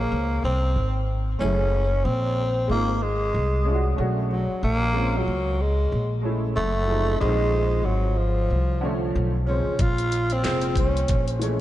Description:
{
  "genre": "hip hop, jazz-hop",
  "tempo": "93 BPM",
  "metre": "4/4",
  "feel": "swing 59% on 16ths",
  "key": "Bb minor",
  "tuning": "A4 = 440 Hz",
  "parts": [
    { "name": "growling tenor saxophone", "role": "melody", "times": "0.0-11.4 s", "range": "F3 to F4", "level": "-26 LUFS", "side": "equal", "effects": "ping-pong delay" },
    { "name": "warm upright piano", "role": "accompaniment", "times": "0.0-11.6 s", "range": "Bb2 to C5", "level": "-30 LUFS", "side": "right 1 dB", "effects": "analog chorus" },
    { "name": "upright bass", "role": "bass", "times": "0.0-11.6 s", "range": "F1 to Db2", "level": "-24 LUFS", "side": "equal", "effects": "none" },
    { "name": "drum and bass drum kit", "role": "drums", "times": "9.8-11.6 s", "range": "hi-hat, kick drum, snare drum", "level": "-25 LUFS", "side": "equal", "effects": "none" }
  ],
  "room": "light reverb",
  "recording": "nothing above 10.7 kHz",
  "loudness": "-21 LUFS",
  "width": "side -14 dB against mid",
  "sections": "0.0-11.6 A section",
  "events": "none",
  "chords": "0.0 Bbm9; 1.4 Gbm7; 2.0 Fm7; 4.0 Bm9; 4.6 Bbm9; 6.6 Gbm7; 7.2 Fm7; 9.1 Bm9; 9.8 Bbm9"
}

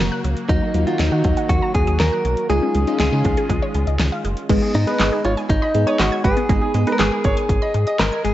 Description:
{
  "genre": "synth-pop",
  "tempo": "120 BPM",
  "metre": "4/4",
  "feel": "straight",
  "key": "G# dorian",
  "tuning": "A4 = 440 Hz",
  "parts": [
    { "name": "direct-recorded clean electric guitar", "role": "melody", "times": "0.0-8.3 s", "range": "D#4 to A#4", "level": "-22 LUFS", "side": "equal", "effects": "analog delay" },
    { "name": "lush unison pad", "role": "sustained chords", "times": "0.0-4.5 s", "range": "C#3 to F#4", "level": "-28 LUFS", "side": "equal", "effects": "chorus" },
    { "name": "resonant blip pluck", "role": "arpeggios", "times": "0.0-8.3 s", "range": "F#3 to G#6", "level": "-28 LUFS", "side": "right 2 dB", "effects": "phaser" },
    { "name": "round analog bass", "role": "bass", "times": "0.0-8.3 s", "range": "F#1 to D#3", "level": "-21 LUFS", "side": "equal", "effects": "none" },
    { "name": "pop drum kit", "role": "drums", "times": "0.0-8.3 s", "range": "crash cymbal, handclaps, hi-hat, kick drum, snare drum", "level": "-22 LUFS", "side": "equal", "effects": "overdrive" },
    { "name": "FM electric piano with soft pad layer", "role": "accompaniment", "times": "0.5-7.5 s", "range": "F#3 to A#4", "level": "-25 LUFS", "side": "left 1 dB", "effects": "chorus, phaser" },
    { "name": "clear concert grand piano", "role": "second line", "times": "4.6-8.0 s", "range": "G#4 to D#5", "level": "-24 LUFS", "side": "right 1 dB", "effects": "analog delay" }
  ],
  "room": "light reverb",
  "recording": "worn, warbling old tape, cassette tape, warbly pitch drift, nothing above 7.8 kHz",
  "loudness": "-16 LUFS",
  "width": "side -14 dB against mid",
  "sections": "0.0-4.5 A section; 4.5-8.3 B section",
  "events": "none",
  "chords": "0.5 D#m; 2.5 C#add9; 4.5 G#m"
}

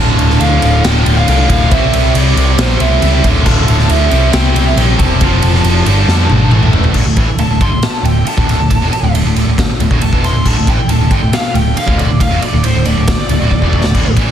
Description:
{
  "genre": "hard rock",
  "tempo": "137 BPM",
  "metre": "4/4",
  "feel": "straight",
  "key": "D minor",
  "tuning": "A4 = 440 Hz",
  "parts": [
    { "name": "bluesy overdriven lead guitar", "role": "melody", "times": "0.0-14.1 s", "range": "C5 to C6", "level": "-19 LUFS", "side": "right 1 dB", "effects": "distortion, digital delay" },
    { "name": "tonewheel organ", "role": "sustained chords", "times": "0.0-14.3 s", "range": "F3 to F5", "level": "-28 LUFS", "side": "equal", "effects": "none" },
    { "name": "distorted electric guitar", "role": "riff", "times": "0.0-14.3 s", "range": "D2 to C4", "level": "-20 LUFS", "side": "left 11 dB", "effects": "distortion" },
    { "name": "high-gain distorted guitar", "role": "riff", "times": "0.0-14.3 s", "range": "D2 to C4", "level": "-18 LUFS", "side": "right 10 dB", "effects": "distortion" },
    { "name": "tight distorted guitar", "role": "riff", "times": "0.0-7.0 s", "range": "D2 to C5", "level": "-21 LUFS", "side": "left 1 dB", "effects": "distortion" },
    { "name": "picked electric bass", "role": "bass", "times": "0.0-14.3 s", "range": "D1 to F2", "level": "-13 LUFS", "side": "equal", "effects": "none" },
    { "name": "raw garage drum kit", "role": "drums", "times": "0.2-14.3 s", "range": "crash cymbal, kick drum, ride cymbal, snare drum, toms", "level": "-14 LUFS", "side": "equal", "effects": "none" }
  ],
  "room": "small room reverb",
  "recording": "dense, heavily limited modern master",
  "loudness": "-9 LUFS",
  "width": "side -9 dB against mid",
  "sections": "0.0-7.0 A section; 7.0-14.3 B section",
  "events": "drum fill 6.1-7.0, 13.5-13.9; lead electric guitar solo 7.0-14.3",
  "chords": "0.0 Dm; 1.7 C; 3.2 Dm; 4.1 C; 5.2 F; 5.9 Gm; 6.5 Am; 7.0 D5"
}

